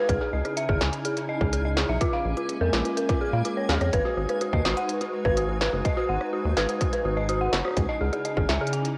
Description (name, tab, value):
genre	IDM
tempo	125 BPM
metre	4/4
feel	straight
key	G# minor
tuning	A4 = 438 Hz
part	hollow soft pad	sustained chords	0.0-9.0 s	C#3 to B4	-35 LUFS	equal	ensemble chorus
part	dark detuned synth bell	arpeggios	0.0-8.8 s	E#4 to G#5	-29 LUFS	equal	chorus, tape echo
part	backwards swelling texture	texture	0.1-9.0 s	G#4 to G#5	-44 LUFS	equal	built-in reverb
part	rubbery square bass	bass	0.1-8.6 s	F#1 to A#2	-30 LUFS	equal	none
part	electronic kick drum	drums	0.1-8.5 s	none	-30 LUFS	equal	distortion, cassette tape
part	industrial drum kit	drums	0.1-8.9 s	hi-hat, rim click, snare drum	-32 LUFS	equal	cassette tape, tape echo
room	light reverb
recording	home recording on cassette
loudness	-26 LUFS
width	mono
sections	0.0-9.0 A section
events	none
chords	0.1 C#madd9; 2.0 A#m7; 3.9 G#m7; 7.8 C#madd9